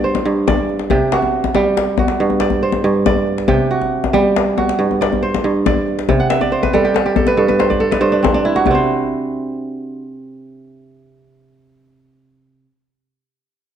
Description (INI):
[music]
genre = west african traditional, West African string and xylophone music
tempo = 93 BPM (dotted quarters)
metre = 12/8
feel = straight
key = C lydian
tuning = A4 = 443 Hz
[part]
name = kora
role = arpeggios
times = 0.0-12.7 s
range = G2 to F#5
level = -15 LUFS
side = right 3 dB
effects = none
[part]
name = djembe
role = percussion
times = 0.1-8.9 s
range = none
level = -19 LUFS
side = left 6 dB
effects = none
[sound]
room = moderate recital hall reverb, RT60 1.3 s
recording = dark, warm production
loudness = -13 LUFS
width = side -9 dB against mid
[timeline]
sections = 0.0-8.7 A section; 8.7-11.2 B section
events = kora fill 6.2-8.7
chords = 0.0 G5; 0.9 C5; 2.2 G5; 3.5 C5; 4.8 G5; 6.1 C5; 7.4 N.C.